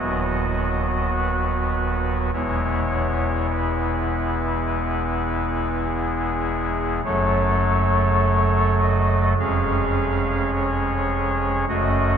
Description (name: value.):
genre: classical, chorale-style piece for pipe organ.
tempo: 52 BPM.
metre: 4/4.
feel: straight.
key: E major.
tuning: A4 = 436 Hz.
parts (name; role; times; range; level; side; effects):
pipe organ, soft reed; solo; 0.0-12.2 s; D#1 to E#5; -19 LUFS; equal; none.
room: wet cathedral reverb, RT60 4.9 s.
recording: dark, warm production.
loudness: -20 LUFS.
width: side -8 dB against mid.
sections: 0.0-12.2 A section.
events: none.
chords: 0.0 B/D#; 2.3 E; 7.0 F#m; 9.4 C#/E#.